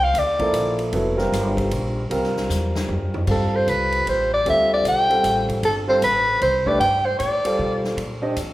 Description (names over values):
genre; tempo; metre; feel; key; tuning
modal jazz; 153 BPM; 3/4; swing 64% on 8ths; G mixolydian from 3.3 s; A4 = 440 Hz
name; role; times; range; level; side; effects
mellow soprano saxophone; melody; 0.0-0.8, 3.3-7.8 s; A4 to G5; -19 LUFS; equal; none
upright bass; bass; 0.0-8.5 s; F1 to B2; -26 LUFS; equal; none
swinging big-band drum kit; drums; 0.1-8.5 s; crash cymbal, hi-hat, kick drum, ride cymbal, snare drum, toms; -32 LUFS; equal; none
warm grand piano; accompaniment; 0.4-8.4 s; F3 to Eb5; -24 LUFS; equal; none
room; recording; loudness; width
wet recital hall reverb, RT60 1.7 s; recorded in a church or concert hall; -18 LUFS; side -16 dB against mid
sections
0.0-3.3 A section; 3.3-8.5 B section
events
drum fill 2.5-3.3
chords
0.0 C7sus4; 3.3 G9sus4; 8.0 Bbsus4